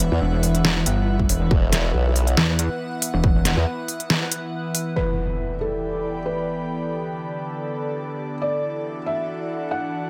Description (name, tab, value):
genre	heavy wobble dubstep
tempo	139 BPM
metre	4/4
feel	swing 54% on 16ths, half-time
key	E minor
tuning	A4 = 440 Hz
part	evolving wavetable pad	sustained chords	0.0-10.1 s	D3 to F#5	-32 LUFS	equal	chorus, built-in reverb, phaser, sidechain pumping
part	pulsing pluck wobble bass	bass	0.0-3.5 s	E1 to E2	-23 LUFS	equal	chorus, overdrive
part	dubstep drum kit	drums	0.0-4.8 s	hi-hat, snare drum	-24 LUFS	equal	none
part	airy breathy pad	texture	0.0-10.1 s	E4 to B5	-34 LUFS	equal	chorus, sidechain pumping
part	formant-sweep wobble bass	bass	0.1-3.7 s	E1 to E2	-22 LUFS	equal	chorus, overdrive
part	electronic kick drum	drums	1.2-3.3 s	none	-22 LUFS	equal	none
part	felt-muted upright piano	melody	5.0-10.1 s	A4 to F#5	-31 LUFS	equal	none
part	impact	sound effects	5.0-6.7 s	none	-32 LUFS	equal	none
room	light reverb, digital ambience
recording	none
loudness	-23 LUFS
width	mono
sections	0.0-5.0 A section; 5.0-10.1 B section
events	drop 0.0-5.0; break 4.1-5.0; impact 5.0-6.7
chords	0.0 E5; 5.0 Em7; 6.7 Gadd9; 8.4 Dadd9